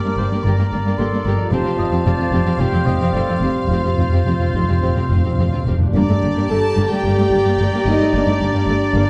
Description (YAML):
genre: cinematic, heroic adventure film score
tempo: 110 BPM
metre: 4/4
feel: straight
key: unclear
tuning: A4 = 438 Hz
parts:
  - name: clear symphonic violin section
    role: melody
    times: 0.0-9.1 s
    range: D5 to F5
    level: -34 LUFS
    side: equal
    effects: none
  - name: concert flute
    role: second line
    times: 0.0-9.1 s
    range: G5 to D6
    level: -32 LUFS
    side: equal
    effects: none
  - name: mellow clarinet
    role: second line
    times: 0.0-9.1 s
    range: F4 to D5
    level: -31 LUFS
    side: equal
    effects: none
  - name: warm oboe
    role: second line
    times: 0.0-9.1 s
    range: Bb4 to Eb5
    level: -31 LUFS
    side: equal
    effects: none
  - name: mellow French horn section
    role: sustained chords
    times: 0.0-9.1 s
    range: G3 to A4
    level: -26 LUFS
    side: equal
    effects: none
  - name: concert harp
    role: arpeggios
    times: 0.0-9.1 s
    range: F2 to C5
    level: -34 LUFS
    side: equal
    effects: none
  - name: mellow trumpet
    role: stabs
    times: 0.0-5.7 s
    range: Bb4 to C5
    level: -30 LUFS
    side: equal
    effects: none
  - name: rich symphonic cello section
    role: bass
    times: 0.0-9.0 s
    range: F2 to G2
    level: -23 LUFS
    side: equal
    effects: none
  - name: warm symphonic violin section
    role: second line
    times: 0.1-9.1 s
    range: D4 to A5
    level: -33 LUFS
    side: equal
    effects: none
  - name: rich studio viola section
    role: accompaniment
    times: 0.1-9.1 s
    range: A3 to G4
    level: -28 LUFS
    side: equal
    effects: none
  - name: warm symphonic double bass section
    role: bass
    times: 0.2-9.0 s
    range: F1 to G1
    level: -24 LUFS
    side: equal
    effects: none
  - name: timpani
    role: percussion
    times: 1.5-5.9 s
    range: F2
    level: -24 LUFS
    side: equal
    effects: none
room: moderate scoring stage reverb, RT60 1.6 s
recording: dark, warm production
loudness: -17 LUFS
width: mono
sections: 0.0-6.0 A section; 6.0-9.1 B section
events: timpani fill 1.5-6.0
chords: 0.0 Gm; 1.5 Fsus2; 6.0 Gm